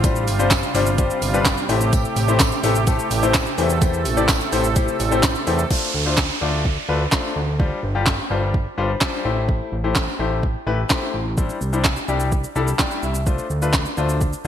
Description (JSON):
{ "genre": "dance-pop", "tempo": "127 BPM", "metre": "4/4", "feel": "straight", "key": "D minor", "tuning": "A4 = 442 Hz", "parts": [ { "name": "clear concert grand piano", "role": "accompaniment", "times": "0.0-14.5 s", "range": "G3 to A5", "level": "-23 LUFS", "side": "left 5 dB", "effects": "sidechain pumping" }, { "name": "pipe organ, strings celeste", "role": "sustained chords", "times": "0.0-5.7 s", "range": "C3 to A4", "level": "-25 LUFS", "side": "right 5 dB", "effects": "sidechain pumping" }, { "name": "fat analog bass", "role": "bass", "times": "0.0-14.5 s", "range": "G1 to E2", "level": "-23 LUFS", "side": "equal", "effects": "sidechain pumping" }, { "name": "smooth R&B drum kit", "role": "drums", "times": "0.0-14.5 s", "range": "crash cymbal, handclaps, hi-hat, kick drum, shaker, snare drum", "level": "-21 LUFS", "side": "equal", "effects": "gated reverb" }, { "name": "tambourine", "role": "percussion", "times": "0.0-5.3 s", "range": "none", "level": "-36 LUFS", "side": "right 16 dB", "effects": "none" }, { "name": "downlifter", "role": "sound effects", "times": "5.7-9.5 s", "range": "none", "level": "-28 LUFS", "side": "right 5 dB", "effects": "none" } ], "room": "light reverb, digital ambience", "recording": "bright 1980s-style digital production", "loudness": "-18 LUFS", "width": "side -9 dB against mid", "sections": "0.0-5.7 A section; 5.7-14.5 B section", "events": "drop 0.0-5.7; grand piano fill 12.3-13.3", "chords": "0.0 G7sus4; 1.7 Am7; 5.7 Dm7; 7.6 G7sus4; 9.2 Am7; 11.4 Cadd9; 13.3 Dm7" }